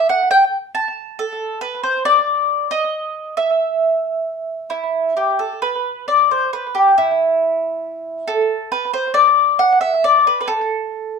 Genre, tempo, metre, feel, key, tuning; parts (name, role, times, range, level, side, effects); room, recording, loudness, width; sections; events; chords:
fado; 68 BPM; 2/4; rubato; E minor; A4 = 440 Hz
mandolin; solo; 0.0-11.2 s; E4 to A5; -15 LUFS; equal; slapback echo
moderate studio reverb, RT60 0.5 s; close, detailed microphones; -15 LUFS; side -5 dB against mid
0.0-5.6 A section; 5.6-11.2 A section